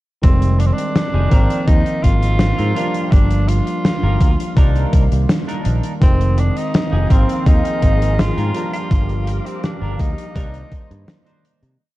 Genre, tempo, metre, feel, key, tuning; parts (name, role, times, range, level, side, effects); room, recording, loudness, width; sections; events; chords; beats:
vaporwave; 83 BPM; 4/4; straight; F dorian; A4 = 440 Hz
warm tenor saxophone; melody; 0.2-11.4 s; C4 to F4; -25 LUFS; equal; tape echo
overdriven tine electric piano; accompaniment; 0.2-11.8 s; Eb3 to D5; -24 LUFS; right 1 dB; lush chorus
modern bright fingered electric bass; bass; 0.2-11.8 s; F1 to C3; -17 LUFS; equal
big rock drum kit; drums; 0.2-11.8 s; hi-hat, snare drum; -22 LUFS; left 1 dB
electronic kick drum; drums; 0.2-10.9 s; -14 LUFS; equal; overdrive
clean electric guitar; riff; 0.6-11.7 s; Ab3 to C5; -31 LUFS; right 2 dB; lush chorus, analog delay
soft string machine; sustained chords; 6.0-11.8 s; G4 to Eb6; -32 LUFS; equal; ensemble chorus
studio reverb; dark, warm production, cassette tape; -14 LUFS; side -17 dB against mid
0.2-11.8 groove
fade-out 7.9-11.8
0.2 Fm9; 1.3 Ab69; 2.8 Gm7; 4.6 Cm9; 6.0 Fm9; 7.1 Ab69; 8.5 Gm7; 10.4 Cm9
| 0.24 0.96 1.68 2.40 | 3.13 3.85 4.57 5.30 | 6.02 6.74 7.46 8.19 | 8.91 9.63 10.36 11.08